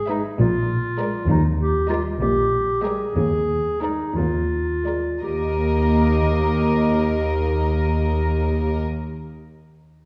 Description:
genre	cinematic, playful, whimsical film cue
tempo	55-67 BPM (dotted quarters)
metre	6/8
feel	straight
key	Eb major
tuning	A4 = 440 Hz
part	warm clarinet	second line	0.0-8.8 s	Eb4 to Ab4	-26 LUFS	equal	none
part	dark studio double bass section	bass	0.0-8.8 s	G#1 to Eb2	-26 LUFS	equal	none
part	warm chamber cello section	bass	0.0-8.8 s	Eb2 to Bb2	-29 LUFS	equal	none
part	warm studio violin section	melody	0.1-8.8 s	D5 to E5	-35 LUFS	equal	none
part	rich studio violin section	second line	0.1-8.8 s	Bb4 to B4	-33 LUFS	equal	none
part	dark studio viola section	accompaniment	0.1-8.8 s	G3 to Bb3	-31 LUFS	equal	none
room	wet concert hall reverb, RT60 1.8 s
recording	heard from further back in the room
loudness	-21 LUFS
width	mono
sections	0.0-5.2 A section; 5.2-9.5 B section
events	slowing down 0.4-5.2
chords	0.4 Bb7; 1.3 Eb; 3.1 Bb7/Eb; 5.2 Eb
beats	0.39 | 1.28 2.20 | 3.15 4.16 | 5.22 6.29 | 7.36 8.43

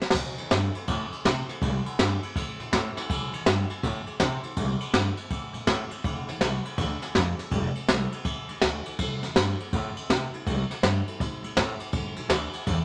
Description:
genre	rockabilly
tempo	163 BPM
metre	4/4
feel	swing 64% on 8ths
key	C mixolydian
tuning	A4 = 440 Hz
part	upright bass	bass	0.0-12.8 s	F1 to C3	-32 LUFS	equal	none
part	jazz brush drum kit	drums	0.0-12.8 s	crash cymbal, kick drum, ride cymbal, snare drum	-29 LUFS	equal	none
room	moderate studio reverb, RT60 0.9 s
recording	none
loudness	-27 LUFS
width	mono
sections	0.1-12.8 A section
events	none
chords	none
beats	| 0.15 0.51 0.88 1.25 | 1.62 1.99 2.36 2.73 | 3.09 3.46 3.83 4.20 | 4.57 4.94 5.31 5.67 | 6.04 6.41 6.78 7.15 | 7.52 7.88 8.25 8.62 | 8.99 9.36 9.73 10.09 | 10.46 10.83 11.20 11.57 | 11.93 12.30 12.67

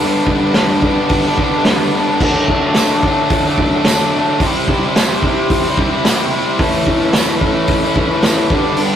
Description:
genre	garage rock duo or trio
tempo	110 BPM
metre	4/4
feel	straight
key	unclear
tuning	A4 = 440 Hz
part	cranked stack guitar	riff	0.0-9.0 s	G2 to E4	-14 LUFS	left 1 dB	overdrive
part	vintage drum kit	drums	0.3-8.9 s	crash cymbal, hi-hat, kick drum, snare drum	-16 LUFS	equal	none
part	tambourine	percussion	2.8-8.4 s	none	-26 LUFS	right 3 dB	none
room	light reverb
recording	rough rehearsal-room recording, tube saturation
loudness	-12 LUFS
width	side -9 dB against mid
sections	0.0-9.0 A section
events	none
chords	0.0 G; 2.2 D; 4.4 C; 6.6 A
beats	| 0.01 0.56 1.12 1.67 | 2.22 2.77 3.32 3.87 | 4.42 4.96 5.51 6.06 | 6.60 7.15 7.70 8.24 | 8.79

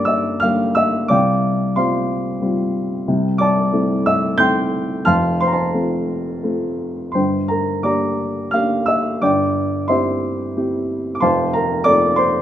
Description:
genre	classical, lyrical solo piano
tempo	89 BPM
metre	3/4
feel	uneven beats, rubato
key	unclear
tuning	A4 = 436 Hz
part	dark baby grand piano	solo	0.0-12.4 s	F1 to G6	-16 LUFS	equal	none
room	light reverb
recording	none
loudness	-16 LUFS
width	side -11 dB against mid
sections	0.0-12.4 A section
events	none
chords	0.0 Gm; 1.1 Csus4; 3.1 Am/C; 5.1 F; 7.2 Gm; 9.2 C/G; 11.2 F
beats	0.43 | 1.10 1.76 2.42 | 3.08 3.74 4.40 | 5.07 5.75 6.45 | 7.15 7.85 8.54 | 9.23 9.91 10.58 | 11.23 11.87

